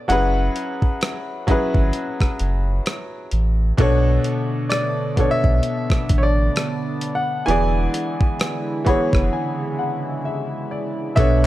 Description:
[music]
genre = contemporary R&B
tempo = 65 BPM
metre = 4/4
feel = swing 58% on 16ths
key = unclear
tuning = A4 = 437 Hz
[part]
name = clear concert grand piano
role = accompaniment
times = 0.0-11.5 s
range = B2 to B5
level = -23 LUFS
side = left 1 dB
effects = none
[part]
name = clear concert grand piano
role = melody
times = 0.1-11.5 s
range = C#5 to G#5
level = -25 LUFS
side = left 1 dB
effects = digital delay
[part]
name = warm sub bass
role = bass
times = 0.1-11.5 s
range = E1 to B1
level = -20 LUFS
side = equal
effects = none
[part]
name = gated 80s digital drum machine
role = drums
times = 0.1-11.4 s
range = hi-hat, kick drum, rim click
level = -20 LUFS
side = equal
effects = none
[part]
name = chorused pulse-width pad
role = sustained chords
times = 3.8-11.5 s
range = C#3 to E4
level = -28 LUFS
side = right 2 dB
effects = sidechain pumping
[sound]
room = little or no reverb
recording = none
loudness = -18 LUFS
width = side -15 dB against mid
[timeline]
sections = 0.0-11.2 A section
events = grand piano fill 8.4-11.2; break 9.3-11.2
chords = 0.1 F#9sus4; 3.8 Bm9; 7.5 E7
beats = | 0.10 1.02 1.94 2.86 | 3.79 4.71 5.63 6.56 | 7.48 8.40 9.32 10.25 | 11.17

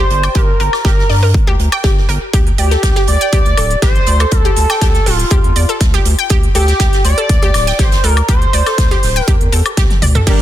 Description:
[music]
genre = progressive house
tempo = 121 BPM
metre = 4/4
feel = straight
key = unclear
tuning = A4 = 437 Hz
[part]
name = expressive synth lead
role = melody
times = 0.0-9.7 s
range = F4 to D5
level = -18 LUFS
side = equal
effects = analog chorus, ping-pong delay
[part]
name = analog pluck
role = arpeggios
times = 0.0-10.3 s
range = G4 to G5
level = -20 LUFS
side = equal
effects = chorus, sidechain pumping, tape echo
[part]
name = round analog bass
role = bass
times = 0.0-10.4 s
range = D1 to G2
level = -15 LUFS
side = equal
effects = sidechain pumping
[part]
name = loose indie drum kit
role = drums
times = 0.1-10.4 s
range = hi-hat, snare drum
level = -25 LUFS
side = right 3 dB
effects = high-pass filter on hats, high-pass filter on snare, high-pass filter on room
[part]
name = big-room dance drum kit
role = drums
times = 0.2-10.4 s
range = crash cymbal, hi-hat, toms, woodblock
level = -21 LUFS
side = equal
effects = none
[part]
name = electronic kick drum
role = drums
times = 0.4-10.4 s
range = none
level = -13 LUFS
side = equal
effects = none
[part]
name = soft supersaw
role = stabs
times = 10.3-10.4 s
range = G3 to D5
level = -16 LUFS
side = equal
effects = sidechain pumping
[sound]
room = digital ambience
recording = dense, heavily limited modern master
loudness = -10 LUFS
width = side -12 dB against mid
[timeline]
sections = 0.0-10.4 A section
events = drum fill 9.9-10.3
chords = 0.0 Gm; 2.3 D7(no3)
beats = | 0.35 0.85 1.34 1.84 | 2.34 2.83 3.33 3.82 | 4.32 4.82 5.31 5.81 | 6.30 6.80 7.29 7.79 | 8.29 8.78 9.28 9.77 | 10.27

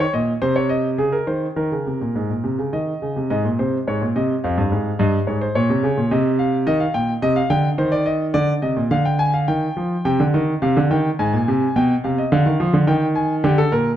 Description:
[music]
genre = classical, baroque-style two-part invention for grand piano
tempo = 106 BPM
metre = 3/4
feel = straight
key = C minor from 10.1 s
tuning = A4 = 441 Hz
[part]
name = clear concert grand piano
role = solo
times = 0.0-13.9 s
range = F2 to Ab5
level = -17 LUFS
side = equal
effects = none
[sound]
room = moderate recital hall reverb, RT60 1.4 s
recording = close, detailed microphones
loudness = -17 LUFS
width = side -11 dB against mid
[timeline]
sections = 0.0-3.3 A section; 3.3-10.1 B section; 10.1-14.0 C section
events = none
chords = 0.0 Cm; 1.0 Db5; 1.6 Eb5; 2.7 Cm; 3.3 Ab; 4.4 Fmadd9; 5.0 Eb7/G; 6.1 Cmadd11; 6.7 Eb; 7.8 Cmadd9/Eb; 8.4 Bb7; 9.5 Eb; 10.1 Cm; 11.2 Abadd9; 11.8 G7/B; 12.9 Ebadd11; 13.4 Gm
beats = 0.41 0.98 | 1.56 2.15 2.73 | 3.31 3.88 4.44 | 5.00 5.56 6.11 | 6.67 7.22 7.79 | 8.35 8.92 9.48 | 10.05 10.62 11.19 | 11.76 12.32 12.88 | 13.44

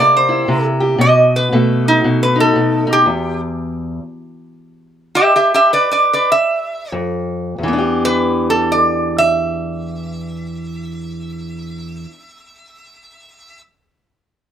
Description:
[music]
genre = blues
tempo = 88-118 BPM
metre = 4/4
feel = swing 62% on 8ths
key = E minor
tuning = A4 = 444 Hz
[part]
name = lap resonator guitar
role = melody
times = 0.0-13.6 s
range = D#4 to E5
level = -13 LUFS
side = right 1 dB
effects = none
[part]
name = fingerpicked steel-string acoustic guitar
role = accompaniment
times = 0.0-12.2 s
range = E2 to G4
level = -17 LUFS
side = left 1 dB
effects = none
[sound]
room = moderate studio reverb, RT60 0.6 s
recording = close, detailed microphones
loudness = -13 LUFS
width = side -9 dB against mid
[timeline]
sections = 0.0-7.6 A section; 7.6-13.0 B section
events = slowing down 3.0-7.6; stop 3.0-6.9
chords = 0.0 C7; 1.0 B7; 3.0 Em; 6.9 N.C.; 7.6 Em7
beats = 0.50 | 1.01 1.52 2.03 2.54 | 3.05 3.56 4.08 4.61 | 5.16 5.72 6.32 6.94 | 7.59 8.27 8.95 9.63 | 10.30 10.98 11.66 12.34

